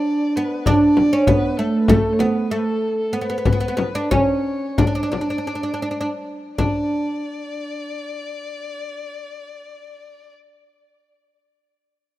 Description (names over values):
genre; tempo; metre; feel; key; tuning
Turkish makam ensemble; 157-197 BPM (eighths); 9/8; straight; unclear; A4 = 441 Hz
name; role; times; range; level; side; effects
oud; melody; 0.0-10.3 s; A3 to D4; -19 LUFS; right 1 dB; none
warm violin; second line; 0.0-10.3 s; A4 to D5; -32 LUFS; left 5 dB; none
frame drum; percussion; 0.7-6.9 s; none; -19 LUFS; left 3 dB; none
room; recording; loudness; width
small room reverb; rough home demo mix; -18 LUFS; side -15 dB against mid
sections
0.0-6.6 A section; 6.6-10.0 B section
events
slowing down 1.3-6.6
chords
none